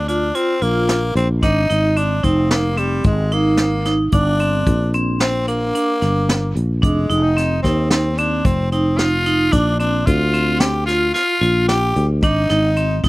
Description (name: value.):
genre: progressive instrumental, band music in an uneven meter.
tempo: 111 BPM.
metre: 5/4.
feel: straight.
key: unclear.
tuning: A4 = 443 Hz.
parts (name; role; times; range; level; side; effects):
growling tenor saxophone; melody; 0.0-13.0 s; G3 to G4; -20 LUFS; equal; none.
sustaining fretless electric bass; bass; 0.0-13.1 s; F1 to Eb2; -19 LUFS; equal; none.
vibraphone with hard mallets; arpeggios; 0.1-13.1 s; C4 to F4; -20 LUFS; right 1 dB; none.
vintage brush drum kit; drums; 0.1-13.1 s; hi-hat, kick drum, snare drum; -20 LUFS; equal; none.
room: little or no reverb.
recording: recorded outdoors, with no room sound.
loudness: -15 LUFS.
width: side -19 dB against mid.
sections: 0.0-13.1 A section.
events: none.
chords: 0.0 Bbadd9; 1.4 Ab; 4.1 Gm; 6.8 F5; 9.5 Bbadd9; 12.2 Ab.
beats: 0.34 0.89 | 1.43 1.97 2.51 3.05 3.59 | 4.13 4.67 5.21 5.75 6.29 | 6.83 7.37 7.91 8.45 8.99 | 9.53 10.07 10.61 11.15 11.69 | 12.23 12.77.